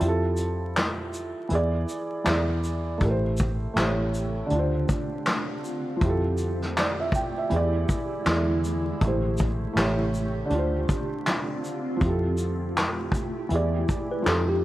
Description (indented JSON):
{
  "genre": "lo-fi hip hop",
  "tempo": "80 BPM",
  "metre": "4/4",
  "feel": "swing 60% on 16ths",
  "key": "D minor",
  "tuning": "A4 = 440 Hz",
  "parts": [
    { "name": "felt-muted upright piano", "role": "accompaniment", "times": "0.0-14.6 s", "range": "D3 to A5", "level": "-28 LUFS", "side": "right 2 dB", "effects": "cassette tape, low-pass filter" },
    { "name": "vintage muted fingered electric bass", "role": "bass", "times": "0.0-14.6 s", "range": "A1 to F2", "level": "-27 LUFS", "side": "equal", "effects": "none" },
    { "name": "vintage brush drum kit", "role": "drums", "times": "0.0-14.5 s", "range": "handclaps, hi-hat, kick drum, shaker, snare drum", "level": "-27 LUFS", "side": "equal", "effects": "none" },
    { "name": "tine electric piano", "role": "second line", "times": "14.1-14.6 s", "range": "G4 to B4", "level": "-27 LUFS", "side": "left 2 dB", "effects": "overdrive, fast stereo tremolo, low-pass filter" }
  ],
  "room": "light reverb, small room reverb",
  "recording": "vinyl crackle",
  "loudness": "-23 LUFS",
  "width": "side -15 dB against mid",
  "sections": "0.0-14.6 A section",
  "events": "break 0.0-3.0",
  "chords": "0.0 Fmaj9; 1.5 E7; 3.0 Am7; 3.8 A7; 4.5 Dm7; 6.0 Fmaj9; 7.5 E7; 9.0 Am7; 9.8 A7; 10.5 Dm7; 12.0 Fmaj9; 13.5 E7",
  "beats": "| 0.01 0.76 1.51 2.26 | 3.01 3.76 4.51 5.26 | 6.01 6.76 7.51 8.26 | 9.01 9.76 10.51 11.26 | 12.01 12.76 13.51 14.26"
}